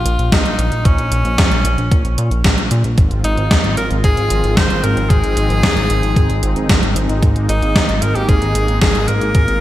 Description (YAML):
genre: synthwave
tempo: 113 BPM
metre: 4/4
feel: straight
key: F minor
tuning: A4 = 440 Hz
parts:
  - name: edgy tenor saxophone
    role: melody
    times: 0.0-9.6 s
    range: Db4 to C5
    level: -20 LUFS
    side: equal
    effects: digital delay
  - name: chorused synth bass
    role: bass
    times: 0.0-9.6 s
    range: Ab1 to Bb2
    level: -17 LUFS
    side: equal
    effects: tube saturation
  - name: gated 80s digital drum machine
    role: drums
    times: 0.1-9.6 s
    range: hi-hat, snare drum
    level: -19 LUFS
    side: equal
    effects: gated reverb, gated reverb snare, overdrive
  - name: electronic kick drum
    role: drums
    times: 0.3-9.5 s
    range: none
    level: -14 LUFS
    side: equal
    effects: overdrive
  - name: brassy analog pad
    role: sustained chords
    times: 3.0-9.6 s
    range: Eb3 to F4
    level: -23 LUFS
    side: equal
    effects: chorus, vintage 12-bit sampler grit, sidechain pumping
room: light reverb, digital ambience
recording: bright 1980s-style digital production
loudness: -12 LUFS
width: side -14 dB against mid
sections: 0.0-9.6 A section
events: none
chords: 0.0 Bbm; 3.0 Fm7/Ab; 7.2 Absus2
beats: 0.32 | 0.85 1.38 1.92 2.45 | 2.98 3.51 4.04 4.57 | 5.10 5.63 6.16 6.69 | 7.22 7.76 8.29 8.82 | 9.35